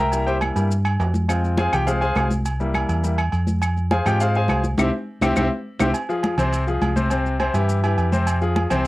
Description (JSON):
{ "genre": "latin, salsa", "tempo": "206 BPM", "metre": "4/4", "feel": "straight", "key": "F harmonic minor", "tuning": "A4 = 440 Hz", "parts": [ { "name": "bright grand piano", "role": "accompaniment", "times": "0.0-8.9 s", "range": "C3 to Bb5", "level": "-22 LUFS", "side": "left 2 dB", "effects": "cassette tape" }, { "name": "hollow-body short-scale fingered electric bass", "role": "bass", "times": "0.0-8.9 s", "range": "C2 to Ab2", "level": "-22 LUFS", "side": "equal", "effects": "none" }, { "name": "agogo bells and timbales", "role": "percussion", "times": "0.1-8.9 s", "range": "none", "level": "-28 LUFS", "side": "right 4 dB", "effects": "none" }, { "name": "congas", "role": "percussion", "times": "0.1-8.9 s", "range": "none", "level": "-26 LUFS", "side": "left 1 dB", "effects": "none" }, { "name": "maracas", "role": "percussion", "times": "0.1-8.9 s", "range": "none", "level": "-40 LUFS", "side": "left 4 dB", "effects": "none" }, { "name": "claves", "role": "percussion", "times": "0.4-5.9 s", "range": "none", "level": "-29 LUFS", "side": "left 4 dB", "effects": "none" } ], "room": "little or no reverb", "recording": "home recording on cassette", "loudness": "-18 LUFS", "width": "side -18 dB against mid", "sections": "0.0-5.9 A section; 5.9-8.9 B section", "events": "grand piano solo 0.0-5.9; band accent 4.8-5.9", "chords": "0.0 C7; 1.3 Fm; 2.5 C7; 3.6 Fm; 4.8 C; 5.9 Fm; 7.1 C; 8.3 Fm" }